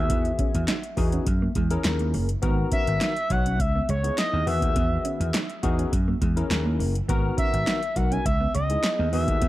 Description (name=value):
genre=early-eighties boogie funk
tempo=103 BPM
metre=4/4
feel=straight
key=G# minor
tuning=A4 = 440 Hz
part: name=expressive synth lead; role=melody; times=0.0-9.5 s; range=C#5 to G#5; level=-28 LUFS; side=equal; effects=chorus, tape echo
part: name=barky tine electric piano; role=accompaniment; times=0.0-9.5 s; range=D#3 to C#5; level=-31 LUFS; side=left 4 dB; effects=analog chorus
part: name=vintage slap bass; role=bass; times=0.0-9.5 s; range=F#1 to F#2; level=-25 LUFS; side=equal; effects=none
part: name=mellow electric guitar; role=riff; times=0.1-9.5 s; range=G#3 to D#4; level=-33 LUFS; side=right 4 dB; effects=lush chorus
part: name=electro analog drum machine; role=drums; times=0.1-9.5 s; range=handclaps, hi-hat, kick drum, snare drum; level=-27 LUFS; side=equal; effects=overdrive
room=digital ambience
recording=none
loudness=-22 LUFS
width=side -16 dB against mid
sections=0.0-9.5 A section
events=none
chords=0.0 Emaj9; 1.3 F#7; 2.4 G#m7; 3.6 C#m7; 4.5 Emaj9; 5.9 F#7; 7.1 G#m7; 8.3 C#m7